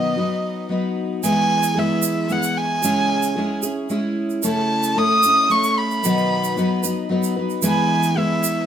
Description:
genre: acoustic folk duo or small band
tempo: 112 BPM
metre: 3/4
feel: straight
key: E major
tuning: A4 = 440 Hz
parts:
  - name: warm erhu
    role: melody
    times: 0.0-8.7 s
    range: D#5 to D#6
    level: -20 LUFS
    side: right 1 dB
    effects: none
  - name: fingerpicked twelve-string acoustic guitar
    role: accompaniment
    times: 0.0-8.7 s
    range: B2 to B4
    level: -20 LUFS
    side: equal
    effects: none
  - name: egg shaker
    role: percussion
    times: 1.2-8.6 s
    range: none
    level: -26 LUFS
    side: right 7 dB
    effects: none
room: moderate studio reverb, RT60 0.9 s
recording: none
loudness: -17 LUFS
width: side -9 dB against mid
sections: 0.0-1.2 A section; 1.2-8.7 A section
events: none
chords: 0.0 B; 1.2 E; 2.8 C#m; 4.4 A/C#; 6.0 B; 7.6 E

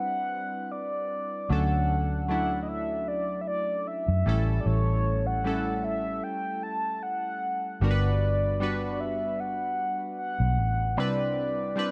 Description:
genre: contemporary R&B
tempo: 76 BPM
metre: 4/4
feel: swing 54% on 16ths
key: D major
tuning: A4 = 440 Hz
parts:
  - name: mellow horn-like synth lead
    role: melody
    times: 0.0-11.9 s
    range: C#5 to A5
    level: -33 LUFS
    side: equal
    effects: chorus
  - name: warm analog keys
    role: accompaniment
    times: 0.0-11.9 s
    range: F#3 to B4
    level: -35 LUFS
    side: equal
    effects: chorus
  - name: vintage muted fingered electric bass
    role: bass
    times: 1.5-11.9 s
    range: G1 to F#2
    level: -29 LUFS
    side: equal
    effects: none
room: light reverb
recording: none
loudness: -28 LUFS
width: mono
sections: 0.0-11.9 A section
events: none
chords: 0.0 Cmaj9; 1.5 Dmaj7; 4.3 A7; 7.8 Gmaj7; 11.0 Cmaj9

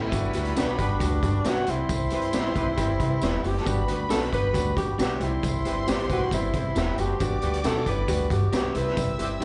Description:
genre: uptempo 1960s-style soul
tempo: 136 BPM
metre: 4/4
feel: straight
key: G major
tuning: A4 = 440 Hz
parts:
  - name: breathy tenor saxophone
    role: melody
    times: 0.0-9.2 s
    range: D4 to B4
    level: -31 LUFS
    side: equal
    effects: slapback echo
  - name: warm concert grand piano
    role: accompaniment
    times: 0.0-9.4 s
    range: G3 to F#4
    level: -34 LUFS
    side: equal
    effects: slapback echo
  - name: electric guitar through a small old amp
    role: stabs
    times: 0.0-9.4 s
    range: D4 to B4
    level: -38 LUFS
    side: equal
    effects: none
  - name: upright bass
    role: bass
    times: 0.0-9.4 s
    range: E1 to C3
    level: -31 LUFS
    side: equal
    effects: none
  - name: warm studio violin section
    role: second line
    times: 0.1-9.4 s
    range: E4 to E6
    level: -37 LUFS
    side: equal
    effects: slapback echo
  - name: raw garage drum kit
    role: drums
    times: 0.1-9.4 s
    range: hi-hat, kick drum, snare drum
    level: -31 LUFS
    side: equal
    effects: none
  - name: tambourine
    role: percussion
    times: 0.1-9.4 s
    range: none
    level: -45 LUFS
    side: equal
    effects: none
  - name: warm horn section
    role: second line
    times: 0.3-9.4 s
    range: B3 to B4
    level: -41 LUFS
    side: equal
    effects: none
room: light reverb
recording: live gig heard through the venue's PA, club reverb, nothing above 10.5 kHz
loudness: -25 LUFS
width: mono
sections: 0.1-9.4 A section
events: none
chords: 0.1 Gmaj7; 1.7 Cmaj7; 3.7 Gmaj7; 5.2 Cmaj7; 7.2 Gmaj7; 8.7 Cmaj7

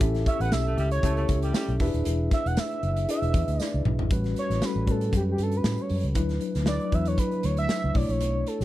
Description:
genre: polished 1980s jazz-funk pop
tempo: 117 BPM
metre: 4/4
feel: swing 54% on 16ths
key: unclear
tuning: A4 = 440 Hz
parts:
  - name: mellow tine electric piano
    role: accompaniment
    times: 0.0-8.6 s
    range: F#3 to E5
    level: -30 LUFS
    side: left 2 dB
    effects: medium stereo tremolo, wide subtle chorus
  - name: vintage muted fingered electric bass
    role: bass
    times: 0.0-8.6 s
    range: D#1 to A2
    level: -27 LUFS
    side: equal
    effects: none
  - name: modern studio drum kit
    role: drums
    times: 0.0-8.6 s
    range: hi-hat, kick drum, snare drum, toms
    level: -28 LUFS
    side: equal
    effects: none
  - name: expressive synth lead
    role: melody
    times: 0.3-8.6 s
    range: G4 to F#5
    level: -31 LUFS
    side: right 2 dB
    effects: chorus
  - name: mellow horn section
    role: second line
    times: 0.3-1.7 s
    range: G3 to C#5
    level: -36 LUFS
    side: right 4 dB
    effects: none
  - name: tambourine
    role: percussion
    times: 0.5-7.8 s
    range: none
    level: -43 LUFS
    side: right 16 dB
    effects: none
room: little or no reverb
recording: lossy compression artefacts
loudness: -23 LUFS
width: side -15 dB against mid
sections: 0.0-4.1 A section; 4.1-8.6 B section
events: drum fill 3.6-4.1; analog synth lead solo 4.1-8.6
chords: 0.0 A7; 1.8 E7; 4.1 A13; 6.2 D69; 8.0 Bm11

